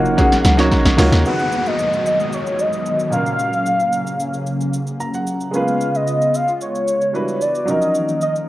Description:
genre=amapiano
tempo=112 BPM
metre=4/4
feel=straight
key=G# dorian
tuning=A4 = 440 Hz
part: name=warm velvety synth lead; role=melody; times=0.0-8.3 s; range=C#5 to F#5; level=-19 LUFS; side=equal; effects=chorus, digital delay
part: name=clear concert grand piano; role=accompaniment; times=0.0-8.5 s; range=A#2 to A#5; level=-22 LUFS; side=right 1 dB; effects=none
part: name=hollow soft pad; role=sustained chords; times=0.0-8.5 s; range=C#3 to F#4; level=-24 LUFS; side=equal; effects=ensemble chorus
part: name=hollow log drum bass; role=bass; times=0.0-1.2 s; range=F#1 to D#2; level=-16 LUFS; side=equal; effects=none
part: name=deep house drum kit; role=drums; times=0.1-8.5 s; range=hi-hat, kick drum, shaker, snare drum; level=-21 LUFS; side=equal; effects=none
part: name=congas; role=percussion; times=0.3-1.2 s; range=none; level=-24 LUFS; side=left 1 dB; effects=none
part: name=downlifter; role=sound effects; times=1.3-5.5 s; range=none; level=-29 LUFS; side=left 1 dB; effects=none
room=light reverb, digital ambience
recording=worn, warbling old tape, cassette tape, warbly pitch drift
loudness=-16 LUFS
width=side -15 dB against mid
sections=0.0-1.3 A section; 1.3-8.5 B section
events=drop 0.0-1.3; drum fill 0.2-1.3; grand piano fill 0.4-1.3, 4.7-5.5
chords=0.0 D#m9; 1.3 G#m7; 3.1 F#maj7/A#; 5.5 C#7; 7.1 Em9; 7.7 D#m9

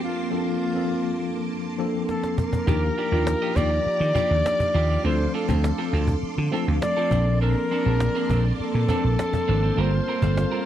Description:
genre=polished 1980s jazz-funk pop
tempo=102 BPM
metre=4/4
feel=straight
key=unclear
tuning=A4 = 441 Hz
part: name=mellow flugelhorn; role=melody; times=0.0-10.7 s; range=F4 to D5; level=-27 LUFS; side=left 1 dB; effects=none
part: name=tine electric piano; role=accompaniment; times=0.0-10.7 s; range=F3 to A5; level=-27 LUFS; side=left 2 dB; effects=overdrive, fast stereo tremolo, lush chorus
part: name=string machine, violins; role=sustained chords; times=0.0-10.7 s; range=Bb3 to D6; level=-33 LUFS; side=right 3 dB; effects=ensemble chorus
part: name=cajon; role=drums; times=2.1-10.6 s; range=none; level=-27 LUFS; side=right 1 dB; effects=none
part: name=electric guitar at the edge of break-up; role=riff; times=2.7-10.7 s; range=C4 to Eb5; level=-32 LUFS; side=right 5 dB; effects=wide subtle chorus
part: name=vintage slap bass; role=bass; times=2.7-10.4 s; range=G1 to Eb3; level=-22 LUFS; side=right 1 dB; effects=none
room=little or no reverb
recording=dry, close 1970s-style studio recording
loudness=-21 LUFS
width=side -11 dB against mid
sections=0.0-10.7 A section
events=drum fill 2.1-2.7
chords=0.0 Bbmaj9; 2.7 Ebmaj9; 5.0 Dm7; 7.1 Bbmaj9; 9.8 Gm11

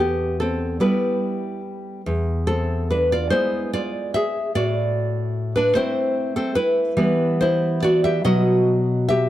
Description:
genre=romantic piece for solo classical guitar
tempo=48 BPM (dotted quarters)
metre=6/8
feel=rubato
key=E minor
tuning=A4 = 440 Hz
part: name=nylon-string guitar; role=solo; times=0.0-9.3 s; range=E2 to E5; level=-19 LUFS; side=equal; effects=none
room=moderate plate reverb, RT60 2.9 s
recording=dark, warm production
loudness=-19 LUFS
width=side -13 dB against mid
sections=0.0-9.3 A section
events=none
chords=0.0 Em; 2.1 E7; 4.5 Am; 7.0 Em; 8.2 B

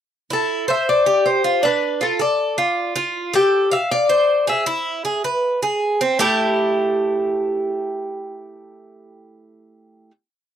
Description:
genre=latin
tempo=157 BPM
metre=4/4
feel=straight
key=A minor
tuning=A4 = 440 Hz
part: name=Cuban tres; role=melody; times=0.3-10.1 s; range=G4 to A5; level=-18 LUFS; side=left 2 dB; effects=none
part: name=Cuban tres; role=arpeggios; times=0.3-10.1 s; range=A3 to F5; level=-20 LUFS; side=right 2 dB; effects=none
room=light reverb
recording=dry, close 1970s-style studio recording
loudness=-17 LUFS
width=side -9 dB against mid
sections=0.1-6.2 verse; 6.2-9.3 final chord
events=none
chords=0.1 Am7; 1.6 Dm; 3.1 Fadd9; 4.7 E; 6.2 A5

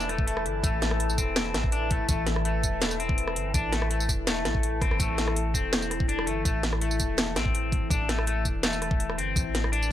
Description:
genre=half-time drum and bass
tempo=165 BPM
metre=4/4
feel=half-time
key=A minor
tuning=A4 = 440 Hz
part: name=deep dark ambient pad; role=sustained chords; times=0.0-9.9 s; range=E3 to A5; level=-33 LUFS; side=left 2 dB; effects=chorus, built-in reverb, sidechain pumping
part: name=electric guitar at the edge of break-up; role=arpeggios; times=0.0-9.9 s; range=A3 to D4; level=-31 LUFS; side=left 3 dB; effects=spring reverb, analog delay
part: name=long sustained 808-style bass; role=bass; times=0.0-9.9 s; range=E1 to A1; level=-30 LUFS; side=equal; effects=transformer saturation
part: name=drum and bass drum kit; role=drums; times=0.0-9.9 s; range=hi-hat, rim click, snare drum, tambourine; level=-29 LUFS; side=right 1 dB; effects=none
part: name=electronic kick drum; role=drums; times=0.2-9.4 s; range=none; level=-28 LUFS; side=equal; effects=none
room=digital ambience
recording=dry, gritty hardware recording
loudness=-24 LUFS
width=side -12 dB against mid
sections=0.0-9.9 A section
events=drum fill 4.8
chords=0.0 A5

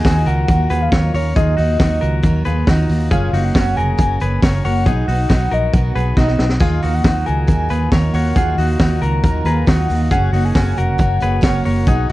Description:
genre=jangly indie pop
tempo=137 BPM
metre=4/4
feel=straight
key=unclear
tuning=A4 = 442 Hz
part: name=warm velvety synth lead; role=melody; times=0.0-12.1 s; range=C#5 to A#5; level=-22 LUFS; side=left 1 dB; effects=chorus, tremolo, slapback echo
part: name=picked twelve-string acoustic guitar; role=accompaniment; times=0.0-12.1 s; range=F#2 to E#4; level=-21 LUFS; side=right 3 dB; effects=none
part: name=direct-recorded clean electric guitar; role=arpeggios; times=0.0-12.1 s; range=C#4 to C#5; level=-25 LUFS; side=left 3 dB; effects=slapback echo
part: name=raw garage drum kit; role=drums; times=0.0-12.1 s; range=hi-hat, kick drum, snare drum, splash cymbal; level=-17 LUFS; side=equal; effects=none
part: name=vintage muted fingered electric bass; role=bass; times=0.1-12.1 s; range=E#1 to D#2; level=-18 LUFS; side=equal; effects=none
room=small room ambience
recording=dry, close 1970s-style studio recording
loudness=-13 LUFS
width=side -17 dB against mid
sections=0.0-12.1 A section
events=drum fill 6.2-6.6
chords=0.0 D#madd9; 3.1 F#; 4.9 B; 6.6 D#madd9; 10.1 F#

